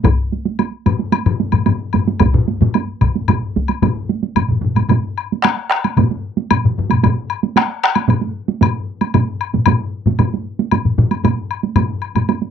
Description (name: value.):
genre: japanese traditional, taiko drum ensemble.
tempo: 113 BPM.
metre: 4/4.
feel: straight.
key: none.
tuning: none.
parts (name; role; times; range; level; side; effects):
solo taiko drums; percussion; 0.0-12.5 s; none; -18 LUFS; right 9 dB; none.
taiko ensemble; percussion; 0.0-12.3 s; none; -18 LUFS; left 5 dB; none.
woodblock; percussion; 0.0-12.4 s; none; -21 LUFS; left 12 dB; none.
taiko ensemble; percussion; 0.1-3.7 s; none; -17 LUFS; left 1 dB; none.
taiko ensemble; percussion; 2.2-12.3 s; none; -18 LUFS; right 2 dB; none.
room: moderate booth ambience, RT60 0.2 s.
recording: dry, close 1970s-style studio recording.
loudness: -14 LUFS.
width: side -8 dB against mid.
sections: 0.0-4.4 A section; 4.4-12.5 B section.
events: speeding up 0.0-12.5.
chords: none.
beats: | 0.04 0.59 1.13 1.67 | 2.21 2.75 3.29 3.83 | 4.37 4.90 5.44 5.97 | 6.50 7.03 7.56 8.09 | 8.62 9.15 9.67 10.20 | 10.72 11.24 11.77 12.29.